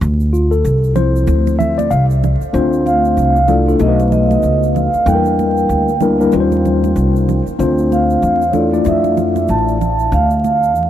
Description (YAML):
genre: hip hop, jazz-hop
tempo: 95 BPM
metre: 4/4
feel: swing 60% on 16ths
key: D minor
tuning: A4 = 443 Hz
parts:
  - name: upright bass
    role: bass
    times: 0.0-10.9 s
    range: A1 to F2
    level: -16 LUFS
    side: equal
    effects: none
  - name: egg shaker and congas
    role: percussion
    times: 0.0-10.9 s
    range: none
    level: -26 LUFS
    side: right 10 dB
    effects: none
  - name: mellow tine electric piano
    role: accompaniment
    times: 0.3-9.8 s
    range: F3 to F5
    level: -16 LUFS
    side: left 3 dB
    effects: slow stereo tremolo
  - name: vibraphone with soft mallets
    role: melody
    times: 2.9-10.9 s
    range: C#5 to A5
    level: -17 LUFS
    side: right 3 dB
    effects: none
room: moderate huge ambient reverb, RT60 8.3 s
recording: dreamy mix soaked in reverb, vinyl crackle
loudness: -12 LUFS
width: side -11 dB against mid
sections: 0.0-2.5 A section; 2.5-10.9 B section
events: tine electric piano solo 0.0-2.5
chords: 0.0 Dm9; 3.8 B7; 5.1 Em7b5; 6.3 Eb13; 7.6 Dm9